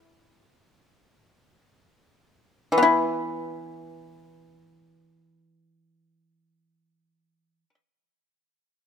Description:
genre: chinese traditional, Chinese solo plucked strings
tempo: free time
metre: none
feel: none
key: unclear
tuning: A4 = 440 Hz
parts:
  - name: pipa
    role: solo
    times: 0.0-7.7 s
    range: E3 to E4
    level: -21 LUFS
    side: left 2 dB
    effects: none
room: light reverb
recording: close, detailed microphones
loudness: -21 LUFS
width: side -7 dB against mid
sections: 0.0-2.9 A section; 2.9-7.4 B section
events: slowing down 0.0-2.9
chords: none

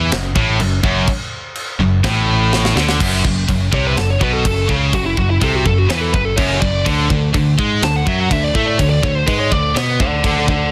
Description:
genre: heavy metal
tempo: 124 BPM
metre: 4/4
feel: straight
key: F# minor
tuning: A4 = 440 Hz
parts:
  - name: distorted electric guitar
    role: riff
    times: 0.0-10.7 s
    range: F#2 to B3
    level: -24 LUFS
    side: equal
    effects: overdrive
  - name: heavy high-gain guitar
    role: riff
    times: 0.0-10.7 s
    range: F#2 to B3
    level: -25 LUFS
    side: equal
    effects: distortion
  - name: scooped high-gain guitar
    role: riff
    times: 0.0-10.7 s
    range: F#2 to B3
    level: -24 LUFS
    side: equal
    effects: distortion
  - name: picked electric bass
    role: bass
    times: 0.0-10.7 s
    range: F#1 to B2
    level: -22 LUFS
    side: equal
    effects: none
  - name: tight metal drum kit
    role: drums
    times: 0.1-10.6 s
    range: china cymbal, crash cymbal, kick drum, snare drum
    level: -22 LUFS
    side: equal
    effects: soft clipping on kick, soft clipping on snare
  - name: high-gain lead guitar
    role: melody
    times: 3.7-10.7 s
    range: E4 to A5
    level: -22 LUFS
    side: equal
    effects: distortion, digital delay
room: light reverb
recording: dense, heavily limited modern master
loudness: -16 LUFS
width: mono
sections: 0.0-3.0 A section; 3.0-10.7 B section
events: drum fill 2.5-3.0; lead electric guitar solo 3.0-10.7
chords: 0.0 F#m; 3.0 F#5; 6.9 D5

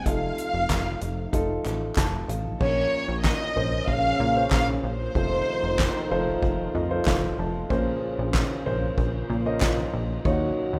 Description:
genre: piano-driven pop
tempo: 94 BPM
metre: 4/4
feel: straight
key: Bb harmonic minor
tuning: A4 = 440 Hz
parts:
  - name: warm studio violin section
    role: melody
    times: 0.0-6.7 s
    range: C5 to F5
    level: -30 LUFS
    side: equal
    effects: none
  - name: dark upright piano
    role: accompaniment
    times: 0.0-10.8 s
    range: Bb2 to A5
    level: -32 LUFS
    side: equal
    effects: none
  - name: sweeping resonant pad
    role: sustained chords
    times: 0.0-10.8 s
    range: Bb2 to C5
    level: -39 LUFS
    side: equal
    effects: none
  - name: plucky analog bass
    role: bass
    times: 0.1-10.8 s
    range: F1 to Bb2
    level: -31 LUFS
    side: equal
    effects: none
  - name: soft-mallet drum kit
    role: drums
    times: 0.1-10.7 s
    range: crash cymbal, handclaps, hi-hat, kick drum, ride cymbal, snare drum, toms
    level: -31 LUFS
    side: equal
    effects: none
  - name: group handclap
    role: percussion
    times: 0.7-9.8 s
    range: none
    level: -41 LUFS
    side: equal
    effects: none
  - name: warm French horn section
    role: second line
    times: 2.6-10.8 s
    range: Bb2 to Gb4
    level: -36 LUFS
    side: equal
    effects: none
room: studio ambience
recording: rough home demo mix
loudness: -25 LUFS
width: mono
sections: 0.0-2.6 A section; 2.6-10.8 B section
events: upright piano fill 1.6-2.6, 6.4-7.7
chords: 0.1 F7; 2.6 Bbmadd9; 5.2 F; 7.7 Bbmadd9; 10.2 Ebm7

